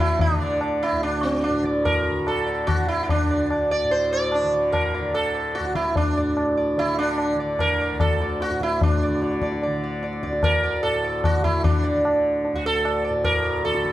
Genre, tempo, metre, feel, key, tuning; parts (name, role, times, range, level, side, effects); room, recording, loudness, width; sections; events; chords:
indian classical, Hindustani; 147 BPM; 7/4; straight; A4 = 440 Hz
sitar; melody; 0.0-13.9 s; C4 to D5; -22 LUFS; right 1 dB
tanpura; drone; 0.0-13.9 s; D2 to D3; -29 LUFS; equal
tabla; percussion; 0.2-13.9 s; -25 LUFS; left 2 dB
moderate recital hall reverb, RT60 1.4 s; -20 LUFS; side -14 dB against mid
0.0-13.9 A section
speeding up 0.0-13.9